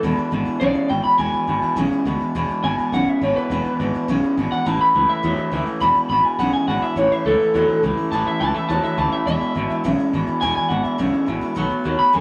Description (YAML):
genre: rockabilly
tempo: 208 BPM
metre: 4/4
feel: straight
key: E mixolydian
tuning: A4 = 440 Hz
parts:
  - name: picked steel-string acoustic guitar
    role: accompaniment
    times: 0.0-12.2 s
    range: E2 to F#4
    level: -30 LUFS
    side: equal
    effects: none
  - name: electric guitar through a small old amp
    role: riff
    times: 0.0-12.2 s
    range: E2 to G#3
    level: -24 LUFS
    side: equal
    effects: none
  - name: sustaining fretless electric bass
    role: bass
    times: 0.0-12.2 s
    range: E1 to F#2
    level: -30 LUFS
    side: equal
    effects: none
  - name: electric guitar through a small old amp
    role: melody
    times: 0.6-12.2 s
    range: A4 to B5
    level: -22 LUFS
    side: equal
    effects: spring reverb
room: wet studio reverb, RT60 0.6 s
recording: none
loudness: -20 LUFS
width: mono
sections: 0.0-2.4 A section; 2.4-12.2 B section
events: clean electric guitar solo 2.4-12.2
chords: 0.0 E7; 4.7 A7; 5.8 E7; 7.0 A7; 9.3 E7; 11.6 B7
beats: | 0.03 0.32 0.61 0.90 | 1.19 1.48 1.77 2.06 | 2.35 2.64 2.93 3.22 | 3.51 3.80 4.08 4.37 | 4.66 4.95 5.24 5.53 | 5.82 6.11 6.39 6.68 | 6.97 7.26 7.55 7.83 | 8.12 8.41 8.70 8.98 | 9.27 9.56 9.84 10.13 | 10.42 10.71 10.99 11.28 | 11.56 11.85 12.14